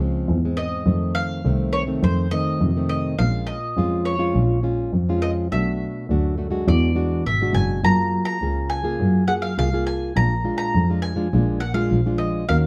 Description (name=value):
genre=samba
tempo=103 BPM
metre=4/4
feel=straight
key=unclear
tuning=A4 = 440 Hz
part: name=nylon-string guitar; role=accompaniment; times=0.0-12.7 s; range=F2 to Bb4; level=-26 LUFS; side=equal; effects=none
part: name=muted double bass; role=bass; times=0.0-12.7 s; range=F#1 to Gb2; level=-24 LUFS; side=equal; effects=none
part: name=bowl-back mandolin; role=melody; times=0.6-12.6 s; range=C5 to Bb5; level=-29 LUFS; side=equal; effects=none
room=light reverb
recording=dark, warm production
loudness=-21 LUFS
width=mono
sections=0.0-12.7 A section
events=none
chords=0.0 Dbmaj7; 0.9 F7; 3.2 Bbm7; 5.5 Cbm7; 6.7 E9; 7.8 Gbmaj9; 10.2 Bb7